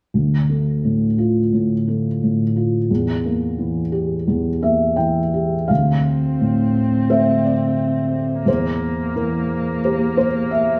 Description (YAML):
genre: neoclassical piano and strings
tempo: 87 BPM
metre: 4/4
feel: rubato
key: D minor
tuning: A4 = 441 Hz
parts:
  - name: felt-muted upright piano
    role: accompaniment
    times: 0.1-10.8 s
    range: D2 to G5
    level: -20 LUFS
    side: equal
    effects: none
  - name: muted cello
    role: second line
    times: 5.7-10.8 s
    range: Bb3 to C4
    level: -25 LUFS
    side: equal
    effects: none
room: wet large studio reverb, RT60 1.3 s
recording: band playing live in one room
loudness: -19 LUFS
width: mono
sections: 0.1-5.7 A section; 5.7-10.8 B section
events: none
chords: 0.1 Dm; 2.9 Edim; 5.7 Dm7; 8.5 C7/E